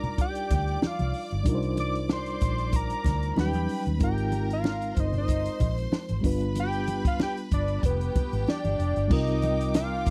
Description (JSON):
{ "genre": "lush 1970s-style soul", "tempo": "94 BPM", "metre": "4/4", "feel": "swing 54% on 16ths", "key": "C minor", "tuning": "A4 = 440 Hz", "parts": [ { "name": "fat analog lead", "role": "melody", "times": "0.0-10.1 s", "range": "B4 to D6", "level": "-34 LUFS", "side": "equal", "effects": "chorus" }, { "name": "rich studio violin section", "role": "second line", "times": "0.0-10.1 s", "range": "Eb4 to D6", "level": "-41 LUFS", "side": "equal", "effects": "none" }, { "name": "mellow reed electric piano", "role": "accompaniment", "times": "0.0-10.1 s", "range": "F#3 to C5", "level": "-35 LUFS", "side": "equal", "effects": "fast tremolo" }, { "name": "vintage muted fingered electric bass", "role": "bass", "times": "0.0-10.1 s", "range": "F1 to E2", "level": "-32 LUFS", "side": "equal", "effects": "none" }, { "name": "compact cocktail drum kit", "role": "drums", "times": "0.0-10.1 s", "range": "crash cymbal, hi-hat, kick drum, snare drum", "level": "-29 LUFS", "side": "equal", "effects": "none" }, { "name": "congas", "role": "percussion", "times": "0.0-9.9 s", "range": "none", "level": "-38 LUFS", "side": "equal", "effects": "none" } ], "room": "little or no reverb", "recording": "dry, close 1970s-style studio recording", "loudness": "-27 LUFS", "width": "mono", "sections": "0.0-9.1 A section", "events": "none", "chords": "0.0 Cm11; 3.4 Eb7alt; 4.0 Ab69; 6.2 G7; 9.1 Cm11", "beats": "0.18 0.82 | 1.46 2.09 2.73 3.37 | 4.01 4.64 5.28 5.92 | 6.56 7.19 7.83 8.47 | 9.11 9.74" }